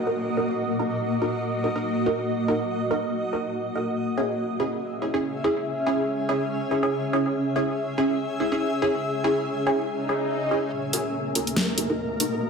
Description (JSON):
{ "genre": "deep dubstep", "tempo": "142 BPM", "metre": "4/4", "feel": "swing 56% on 16ths, half-time", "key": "Eb phrygian", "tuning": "A4 = 437 Hz", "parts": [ { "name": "granular cloud pad", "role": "sustained chords", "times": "0.0-12.5 s", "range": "Bb3 to Fb5", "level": "-26 LUFS", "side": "equal", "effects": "built-in reverb" }, { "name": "filtered dub chord stab", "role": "stabs", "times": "0.0-12.4 s", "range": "Db4 to Bb4", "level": "-26 LUFS", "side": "right 1 dB", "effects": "phaser, lush chorus, dub echo" }, { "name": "downlifter and swell", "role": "sound effects", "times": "0.0-0.6, 10.0-10.7 s", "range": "none", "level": "-33 LUFS", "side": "left 1 dB", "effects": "none" }, { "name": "saturated sub bass", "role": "bass", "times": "10.7-12.5 s", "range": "Eb1 to Eb2", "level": "-38 LUFS", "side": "left 1 dB", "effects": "high-pass filter" }, { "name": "flickering grainy texture", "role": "texture", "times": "10.9-12.5 s", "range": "Bb3 to Bb4", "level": "-30 LUFS", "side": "equal", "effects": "built-in reverb" }, { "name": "dubstep drum kit", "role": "drums", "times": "10.9-12.3 s", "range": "hi-hat, snare drum", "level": "-25 LUFS", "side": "equal", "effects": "studio reverb" } ], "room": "wet echo chamber reverb, RT60 1.4 s", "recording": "none", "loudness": "-23 LUFS", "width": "side -5 dB against mid", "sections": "0.0-10.7 A section; 10.7-12.5 B section", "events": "filter sweep on synth stab 0.0-10.7; swell 10.0-10.7; build-up 10.7-12.5; filter sweep on ambient pad 10.7-12.5", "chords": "0.0 Ebm; 4.0 Dbm; 10.7 Ebm" }